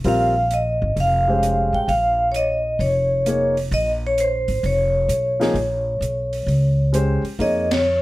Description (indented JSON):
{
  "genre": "modal jazz",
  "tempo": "131 BPM",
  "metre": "4/4",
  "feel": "swing 67% on 8ths",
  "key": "Bb dorian",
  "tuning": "A4 = 439 Hz",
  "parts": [
    { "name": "dark grand piano", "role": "accompaniment", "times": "0.0-7.7 s", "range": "F3 to Db5", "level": "-22 LUFS", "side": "left 1 dB", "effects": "none" },
    { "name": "upright bass", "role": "bass", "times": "0.0-8.0 s", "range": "F1 to F2", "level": "-22 LUFS", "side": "equal", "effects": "none" },
    { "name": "open jazz drum kit", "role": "drums", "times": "0.0-7.8 s", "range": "hi-hat, ride cymbal, snare drum", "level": "-31 LUFS", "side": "right 3 dB", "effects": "none" },
    { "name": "vibraphone with medium mallets", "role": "melody", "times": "0.1-8.0 s", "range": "C5 to G5", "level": "-20 LUFS", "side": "equal", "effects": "none" }
  ],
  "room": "light reverb",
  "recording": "none",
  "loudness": "-17 LUFS",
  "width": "side -18 dB against mid",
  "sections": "0.0-8.0 A section",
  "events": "band accent 7.6",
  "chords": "0.0 Bbm69",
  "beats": "| 0.05 0.51 0.97 1.43 | 1.89 2.35 2.81 3.26 | 3.72 4.18 4.64 5.10 | 5.56 6.02 6.48 6.94 | 7.40 7.86"
}